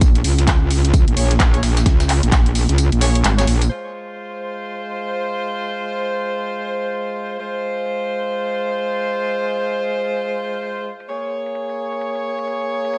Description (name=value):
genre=bass house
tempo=130 BPM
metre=4/4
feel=swing 61% on 16ths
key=F minor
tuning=A4 = 440 Hz
part: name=metallic wobble bass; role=bass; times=0.0-3.7 s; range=Ab1 to Db2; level=-18 LUFS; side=equal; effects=chorus, overdrive, sidechain pumping
part: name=dusty soul sampler-style drum kit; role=drums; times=0.0-3.7 s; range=hi-hat, snare drum, tambourine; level=-32 LUFS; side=equal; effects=none
part: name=electronic kick drum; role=drums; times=0.0-2.4 s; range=none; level=-17 LUFS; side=equal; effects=studio reverb
part: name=house drum kit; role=drums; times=0.0-13.0 s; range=crash cymbal, handclaps, hi-hat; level=-25 LUFS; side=equal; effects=low-pass filter on hats, studio reverb, low-pass filter on snare, low-pass filter on cymbals
part: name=warm horn section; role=stabs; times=1.2-13.0 s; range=Ab3 to Db5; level=-25 LUFS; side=equal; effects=sidechain pumping, delay
room=light reverb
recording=nothing above 10.9 kHz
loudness=-20 LUFS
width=mono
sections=0.0-3.7 A section; 3.7-13.0 B section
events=kick drops out 2.8-3.7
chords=0.0 Bbm7; 3.7 Fm; 11.1 Bbm7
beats=| 0.01 0.47 0.94 1.40 | 1.86 2.32 2.78 3.24 | 3.71 4.17 4.63 5.09 | 5.55 6.01 6.47 6.94 | 7.40 7.86 8.32 8.78 | 9.24 9.71 10.17 10.63 | 11.09 11.55 12.01 12.47 | 12.94